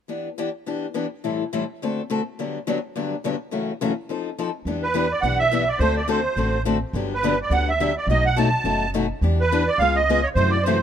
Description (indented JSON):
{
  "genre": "acoustic string swing (jazz manouche)",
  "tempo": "210 BPM",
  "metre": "4/4",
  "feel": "swing 59% on 8ths",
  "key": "E minor",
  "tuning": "A4 = 440 Hz",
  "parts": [
    { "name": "picked steel-string acoustic guitar", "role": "accompaniment", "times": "0.1-10.8 s", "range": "F#2 to A4", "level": "-24 LUFS", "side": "left 4 dB", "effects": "none" },
    { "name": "upright bass", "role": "bass", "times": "4.7-10.8 s", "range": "F#1 to F#2", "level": "-24 LUFS", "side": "right 1 dB", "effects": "none" },
    { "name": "musette accordion", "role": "melody", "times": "4.8-10.8 s", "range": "B4 to A5", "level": "-21 LUFS", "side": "right 4 dB", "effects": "none" }
  ],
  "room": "light reverb",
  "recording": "minimal, uncompressed stereo recording",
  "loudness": "-20 LUFS",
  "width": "side -9 dB against mid",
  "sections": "0.1-4.7 A section; 4.7-10.8 B section",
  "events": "none",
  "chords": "0.1 Em7; 1.2 Am7; 1.8 D7; 2.4 Gmaj7; 3.5 F#m7; 4.1 F7; 4.7 Em7; 5.8 D7; 6.9 Gmaj7; 8.1 B7; 9.2 Em7; 9.8 C#7"
}